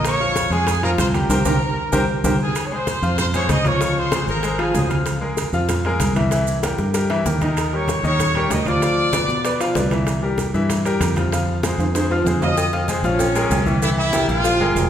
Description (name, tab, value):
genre	latin, salsa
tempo	192 BPM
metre	4/4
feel	straight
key	F minor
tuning	A4 = 440 Hz
part	clear trumpet section	melody	0.0-4.9, 7.4-9.6, 12.4-14.9 s	Db4 to Eb6	-23 LUFS	right 1 dB	none
part	bright upright piano	accompaniment	0.0-14.9 s	Eb3 to Bb5	-22 LUFS	left 1 dB	none
part	fingered electric bass	bass	0.0-14.9 s	F1 to B2	-22 LUFS	equal	none
part	bongos and cowbell	percussion	0.0-14.9 s	none	-30 LUFS	left 4 dB	none
part	congas	percussion	0.0-14.9 s	none	-27 LUFS	equal	none
part	timbales and agogo bells	percussion	0.0-14.9 s	none	-29 LUFS	right 3 dB	none
part	maracas	percussion	0.1-14.9 s	none	-33 LUFS	right 5 dB	none
room	wet recital hall reverb, RT60 1.5 s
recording	recorded in a church or concert hall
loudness	-17 LUFS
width	side -10 dB against mid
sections	0.0-2.6 A section; 2.6-12.6 B section; 12.6-14.9 C section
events	band accent 1.3-2.6; drum fill 1.6-2.6, 6.8-7.6, 11.8-12.6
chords	0.0 Bbm7; 1.3 C5; 2.6 Fm7; 3.8 Dbmaj7; 5.1 Bbm7/Db; 6.3 C7; 7.6 Eb7; 8.8 Dm13; 10.1 C7; 11.3 Fm7; 13.2 Bbm7; 13.8 C7